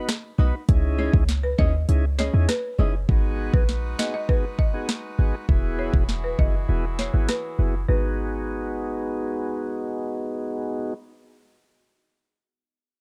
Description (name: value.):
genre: dancehall.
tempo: 100 BPM.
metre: 4/4.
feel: straight.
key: G# minor.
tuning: A4 = 440 Hz.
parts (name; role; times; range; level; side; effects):
tonewheel organ; accompaniment; 0.0-10.9 s; B3 to B4; -32 LUFS; equal; slow rotary speaker, sidechain pumping, low-pass filter.
afro-pop drum kit; drums; 0.1-7.4 s; hi-hat, kick drum, rim click, snare drum; -24 LUFS; equal; none.
flamenco guitar; arpeggios; 0.4-2.9 s; C#4 to D#5; -33 LUFS; equal; slapback echo.
short 808-style bass; bass; 0.4-10.9 s; E1 to E2; -24 LUFS; equal; none.
folk marimba with hard mallets; melody; 1.0-9.6 s; B4 to D#5; -34 LUFS; equal; low-pass filter, slapback echo.
accordion; sustained chords; 3.1-10.9 s; E3 to B4; -40 LUFS; equal; sidechain pumping, low-pass filter.
room: small room reverb.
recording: dark, warm production.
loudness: -24 LUFS.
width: mono.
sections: 0.0-3.1 A section; 3.1-7.9 B section; 7.9-10.3 C section.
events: kick muted 1.9-3.1, 6.7-7.9.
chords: 0.0 B; 0.7 C#madd9; 3.1 G#m7; 5.5 Eadd9; 7.9 G#m7.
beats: 0.09 | 0.69 1.29 1.89 2.49 | 3.09 3.69 4.29 4.89 | 5.49 6.09 6.69 7.29 | 7.89 8.49 9.09 9.69.